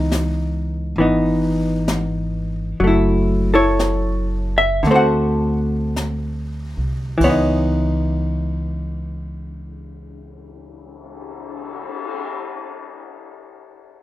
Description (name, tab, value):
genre	jazz ballad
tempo	46-71 BPM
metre	4/4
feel	swing 67% on 8ths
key	C# minor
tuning	A4 = 440 Hz
part	vintage hollow-body jazz guitar	accompaniment	0.0-12.0 s	D3 to F#5	-18 LUFS	left 1 dB	plate reverb
part	upright bass	bass	0.0-11.8 s	F#1 to D2	-23 LUFS	equal	none
part	jazz brush drum kit	drums	0.1-12.2 s	brushed snare drum, cymbal swell, hi-hat, kick drum, ride cymbal, snare drum	-28 LUFS	left 2 dB	none
room	moderate studio ambience, RT60 0.5 s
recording	rough home demo mix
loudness	-17 LUFS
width	side -15 dB against mid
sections	0.0-2.8 A section; 2.8-7.2 B section; 7.2-12.4 C section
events	slowing down 0.0-7.2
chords	0.0 C#m9; 2.8 F#m7; 4.8 D7; 7.2 C#m9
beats	0.12 0.98 1.88 | 2.82 3.80 4.84 5.96 | 7.21 8.51 9.81 11.12